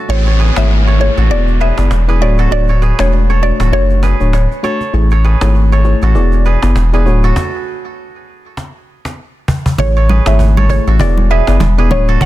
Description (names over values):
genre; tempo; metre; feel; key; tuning
afrobeats; 99 BPM; 4/4; swing 58% on 16ths; unclear; A4 = 438 Hz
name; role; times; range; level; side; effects
kora; riff; 0.0-12.3 s; E4 to C#5; -21 LUFS; right 5 dB; digital delay
mallet-like synth pluck; melody; 0.1-4.2, 9.8-12.3 s; C#5 to F#5; -20 LUFS; right 1 dB; chorus, phaser, digital delay
mellow FM electric piano; accompaniment; 0.1-12.3 s; A3 to D5; -20 LUFS; left 4 dB; chorus
saturated sub bass; bass; 0.1-12.3 s; D1 to A1; -11 LUFS; equal; none
cajon; drums; 0.1-12.3 s; none; -20 LUFS; equal; none
downlifter; sound effects; 0.1-4.9 s; none; -24 LUFS; equal; none
congas; percussion; 9.8-12.3 s; none; -20 LUFS; right 3 dB; none
room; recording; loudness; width
small room ambience; dense, heavily limited modern master; -10 LUFS; side -15 dB against mid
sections
0.1-9.8 A section; 9.8-12.3 B section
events
stop 7.4-9.8; drum fill 8.6-9.8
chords
0.1 Amaj7; 1.3 E7; 2.2 Dmaj7; 4.9 Amaj7; 6.1 E7; 7.1 D; 9.8 Amaj7; 11.0 E7